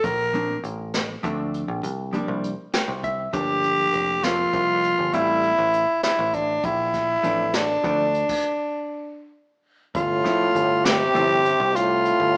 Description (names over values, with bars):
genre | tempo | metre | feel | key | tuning
progressive instrumental, band music in an uneven meter | 200 BPM (eighths) | 11/8 | straight | G dorian | A4 = 442 Hz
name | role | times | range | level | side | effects
growling tenor saxophone | melody | 0.0-12.4 s | D4 to Bb4 | -23 LUFS | equal | none
picked electric bass | bass | 0.0-12.4 s | F1 to D2 | -33 LUFS | equal | none
jazz brush drum kit | drums | 0.0-12.2 s | crash cymbal, hi-hat, kick drum, snare drum | -30 LUFS | equal | none
vintage hollow-body jazz guitar | accompaniment | 0.3-11.4 s | F3 to G5 | -31 LUFS | equal | none
trombone with cup mute | second line | 10.0-12.4 s | A2 to C3 | -27 LUFS | equal | none
room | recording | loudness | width
moderate large studio reverb, RT60 1.1 s | band playing live in one room, small speaker sound | -23 LUFS | mono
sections
0.0-9.9 A section; 9.9-12.4 B section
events
hollow-body jazz guitar fill 2.4-3.3; stop 8.3-9.9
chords
0.0 Bbmaj7; 1.8 C7sus4; 3.3 Gm7; 5.1 Am7; 6.6 Bbmaj7; 8.4 N.C.; 9.9 G13sus4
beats
| 0.04 0.34 0.64 0.94 1.24 1.54 1.84 2.14 2.44 2.74 3.04 | 3.34 3.64 3.94 4.24 4.54 4.84 5.14 5.44 5.74 6.04 6.34 | 6.64 6.94 7.24 7.54 7.84 8.14 8.45 8.74 9.05 9.35 9.65 | 9.95 10.25 10.55 10.85 11.15 11.45 11.75 12.05 12.35